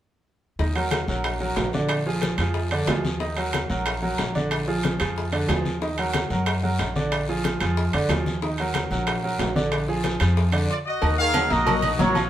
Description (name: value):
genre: latin, salsa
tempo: 184 BPM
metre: 4/4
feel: straight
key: Eb minor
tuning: A4 = 440 Hz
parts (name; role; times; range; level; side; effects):
- bright grand piano; accompaniment; 0.6-12.3 s; D3 to Eb6; -26 LUFS; right 2 dB; none
- upright bass; bass; 0.6-12.3 s; Bb1 to Gb2; -27 LUFS; left 1 dB; none
- bongos and cowbell; percussion; 0.6-12.2 s; none; -33 LUFS; left 5 dB; none
- congas; percussion; 0.6-12.3 s; none; -31 LUFS; left 2 dB; none
- guiro; percussion; 0.6-12.3 s; none; -37 LUFS; left 3 dB; none
- timbales and agogo bells; percussion; 0.8-12.3 s; none; -29 LUFS; right 4 dB; none
- mellow trumpet section; melody; 10.7-12.3 s; F4 to F5; -23 LUFS; equal; none
- bright trombone section; second line; 11.2-12.2 s; Eb3 to Gb3; -26 LUFS; left 3 dB; none
room: wet studio reverb, RT60 0.8 s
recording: band playing live in one room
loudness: -21 LUFS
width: side -12 dB against mid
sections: 0.6-11.0 A section; 11.0-12.3 B section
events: stop 10.7-11.0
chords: 0.6 Ebm; 1.9 Bb7; 3.2 Ebm; 4.5 Bb7; 5.8 Ebm; 7.1 Bb7; 8.4 Ebm; 9.7 Bb7; 11.0 Ebm7